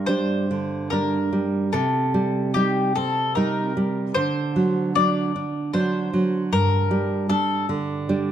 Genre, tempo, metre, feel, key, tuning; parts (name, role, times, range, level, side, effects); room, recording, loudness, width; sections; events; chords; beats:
romantic duo for mandolin and classical guitar; 75 BPM; 3/4; rubato; G minor; A4 = 440 Hz
bowl-back mandolin; melody; 0.0-7.7 s; G4 to D5; -25 LUFS; left 4 dB
nylon-string guitar; accompaniment; 0.0-8.3 s; G2 to Eb4; -22 LUFS; right 2 dB
light reverb; close, detailed microphones; -20 LUFS; side -10 dB against mid
0.0-8.3 A section
0.0 Gm; 1.7 Cm; 4.2 D7; 6.5 Gm
0.08 0.91 | 1.73 2.54 3.35 | 4.15 4.95 5.74 | 6.52 7.29 8.08